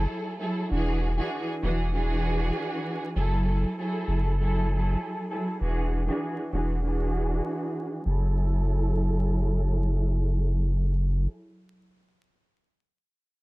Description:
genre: hip hop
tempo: 98 BPM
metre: 4/4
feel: swing 55% on 16ths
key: F# minor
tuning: A4 = 439 Hz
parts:
  - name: rich studio string section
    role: accompaniment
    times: 0.0-11.3 s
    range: E3 to A4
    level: -29 LUFS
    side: right 1 dB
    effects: cassette tape, high-pass filter, low-pass filter
  - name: warm sub bass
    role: bass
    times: 0.0-11.3 s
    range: E1 to F#1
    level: -25 LUFS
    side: equal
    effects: none
room: little or no reverb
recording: dark, warm production, vinyl crackle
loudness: -25 LUFS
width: side -21 dB against mid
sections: 0.0-3.2 A section; 3.2-8.1 B section; 8.1-10.5 C section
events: filter sweep on string section 3.2-8.1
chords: 0.0 F#m9; 0.7 E9; 3.2 F#m9; 5.6 E9; 8.1 F#m9

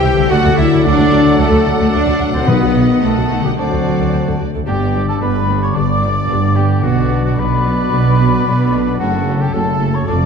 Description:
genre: cinematic, heroic adventure film score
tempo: 111 BPM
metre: 4/4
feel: straight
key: G lydian from 4.7 s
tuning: A4 = 441 Hz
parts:
  - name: warm symphonic violin section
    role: melody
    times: 0.0-10.2 s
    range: C#4 to G5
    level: -29 LUFS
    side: left 4 dB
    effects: none
  - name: bright clarinet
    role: second line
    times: 0.0-4.4 s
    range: A4 to C5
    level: -26 LUFS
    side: equal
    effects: none
  - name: clear oboe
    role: second line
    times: 0.0-10.3 s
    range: F#4 to E5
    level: -27 LUFS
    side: right 2 dB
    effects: none
  - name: rich studio violin section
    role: second line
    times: 0.0-10.3 s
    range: F#4 to G5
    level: -30 LUFS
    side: left 2 dB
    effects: none
  - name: rich symphonic viola section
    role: accompaniment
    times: 0.0-10.2 s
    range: F#3 to E5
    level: -27 LUFS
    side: right 2 dB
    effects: none
  - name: dark French horn section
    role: sustained chords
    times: 0.0-10.3 s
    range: F#3 to G4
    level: -21 LUFS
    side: left 4 dB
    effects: none
  - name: warm trombone section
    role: sustained chords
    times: 0.0-10.3 s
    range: G2 to C4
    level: -24 LUFS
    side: right 4 dB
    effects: none
  - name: concert harp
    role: arpeggios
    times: 0.0-10.3 s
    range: F2 to B4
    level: -20 LUFS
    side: left 8 dB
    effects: none
  - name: clear trumpet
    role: stabs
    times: 0.0-10.3 s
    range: F#4 to G5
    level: -24 LUFS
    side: right 2 dB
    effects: none
  - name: clear symphonic cello section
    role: bass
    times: 0.0-10.3 s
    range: F2 to G4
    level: -20 LUFS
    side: right 3 dB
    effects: none
  - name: rich studio double bass section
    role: bass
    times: 0.0-10.3 s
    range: F1 to D2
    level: -18 LUFS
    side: right 3 dB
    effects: none
  - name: mellow large flute ensemble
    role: second line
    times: 0.3-10.3 s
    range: F#5 to D6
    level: -23 LUFS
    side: left 3 dB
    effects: none
  - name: timpani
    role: percussion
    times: 2.5-3.3 s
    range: B2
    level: -18 LUFS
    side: left 1 dB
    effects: none
room: wet scoring stage reverb, RT60 1.9 s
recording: dark, warm production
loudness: -12 LUFS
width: side -6 dB against mid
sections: 0.0-4.7 A section; 4.7-10.3 B section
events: none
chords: 0.3 D; 2.5 B; 3.6 D7; 4.7 G; 6.8 Bm; 9.0 F#m

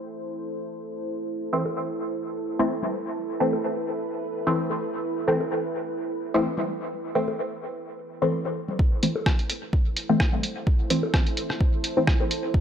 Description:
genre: dub techno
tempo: 128 BPM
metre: 4/4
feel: swing 55% on 16ths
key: A minor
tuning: A4 = 440 Hz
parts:
  - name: deep dark ambient pad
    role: sustained chords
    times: 0.0-12.6 s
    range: E4 to C5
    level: -32 LUFS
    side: right 2 dB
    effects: chorus, built-in reverb, sidechain pumping
  - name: filtered dub chord stab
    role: stabs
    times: 1.5-12.6 s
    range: E3 to C4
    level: -26 LUFS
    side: left 1 dB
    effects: chorus, phaser, sidechain pumping, dub echo
  - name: bongos and congas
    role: percussion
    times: 1.7-12.3 s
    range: none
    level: -35 LUFS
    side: left 3 dB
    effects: sidechain pumping on perc, studio reverb, dub echo
  - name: electronic kick drum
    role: drums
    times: 8.8-12.6 s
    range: none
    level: -22 LUFS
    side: equal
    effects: studio reverb
  - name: lo-fi sampler-style drum kit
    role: drums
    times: 9.0-12.4 s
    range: hi-hat, rim click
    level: -28 LUFS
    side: equal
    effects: studio reverb, dub echo
room: light reverb, digital ambience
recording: dry, gritty hardware recording, low-pass filter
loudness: -24 LUFS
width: side -8 dB against mid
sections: 0.0-8.8 A section; 8.8-12.6 B section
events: filter sweep 0.0-8.8; filter sweep on synth stab 8.8-12.6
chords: 0.0 Am

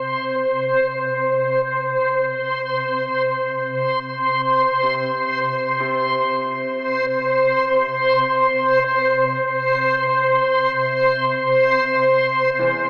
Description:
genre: dark ambient drone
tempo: free time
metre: none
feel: none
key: unclear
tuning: A4 = 440 Hz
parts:
  - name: swarming drone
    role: drone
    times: 0.0-12.9 s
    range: C3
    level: -36 LUFS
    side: equal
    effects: built-in reverb, phaser
  - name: backwards swelling texture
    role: texture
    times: 0.0-12.9 s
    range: C5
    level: -19 LUFS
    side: equal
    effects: built-in reverb
  - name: clear baby grand piano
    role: arpeggios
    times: 4.8-12.9 s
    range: E2 to C3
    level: -38 LUFS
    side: equal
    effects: diffuse ambient delay
room: wet cathedral reverb, RT60 5.6 s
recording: AM radio sound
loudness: -19 LUFS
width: mono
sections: 0.0-12.9 A section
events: fade-in on grand piano 0.0-12.9; filter sweep on synth drone 0.0-12.9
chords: none

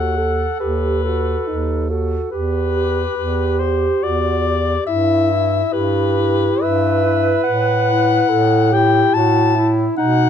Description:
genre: classical, lyrical piece for single-reed quartet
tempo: 71 BPM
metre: 3/4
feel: rubato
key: E minor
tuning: A4 = 440 Hz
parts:
  - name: warm soprano saxophone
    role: melody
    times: 0.0-10.3 s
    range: B4 to A5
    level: -20 LUFS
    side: left 10 dB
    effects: none
  - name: dark alto saxophone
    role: second line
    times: 0.0-10.3 s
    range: D#4 to B4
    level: -21 LUFS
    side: right 7 dB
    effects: none
  - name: warm clarinet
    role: accompaniment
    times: 0.0-10.3 s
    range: D#4 to A4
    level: -22 LUFS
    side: left 4 dB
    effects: none
  - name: warm bass clarinet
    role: bass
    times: 0.0-10.3 s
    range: D#2 to B2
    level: -20 LUFS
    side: right 2 dB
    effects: none
room: light reverb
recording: dark, warm production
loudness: -15 LUFS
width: side -8 dB against mid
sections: 0.0-10.3 A section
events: none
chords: 0.0 B7/D#; 2.3 Em; 4.9 Em/G; 7.5 F#m7/A

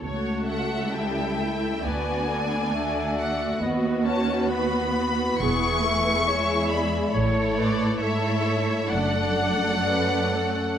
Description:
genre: classical, slow romantic movement for symphony orchestra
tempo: 67 BPM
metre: 4/4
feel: rubato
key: A major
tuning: A4 = 442 Hz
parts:
  - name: warm symphonic violin section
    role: second line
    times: 0.0-10.8 s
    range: F#4 to E5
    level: -30 LUFS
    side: left 2 dB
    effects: none
  - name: warm symphonic viola section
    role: accompaniment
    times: 0.0-10.8 s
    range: G3 to F#4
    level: -28 LUFS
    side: equal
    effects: none
  - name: rich symphonic cello section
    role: bass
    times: 0.0-10.8 s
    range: C#2 to A2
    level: -28 LUFS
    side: right 2 dB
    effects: none
  - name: rich symphonic double bass section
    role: bass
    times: 0.0-9.8 s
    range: E1 to D#2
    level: -32 LUFS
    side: right 2 dB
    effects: none
  - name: warm symphonic violin section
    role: melody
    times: 0.5-10.8 s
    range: D5 to C#6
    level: -28 LUFS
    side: left 2 dB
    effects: none
  - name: warm clarinet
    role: second line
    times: 1.8-10.8 s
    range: G#4 to E5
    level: -30 LUFS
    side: equal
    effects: none
room: moderate scoring stage reverb, RT60 2.0 s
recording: none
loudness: -22 LUFS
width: side -9 dB against mid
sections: 0.0-10.8 A section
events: none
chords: 0.0 A7/C#; 1.8 D; 3.6 B/D#; 5.4 E; 7.1 A; 8.9 D/F#

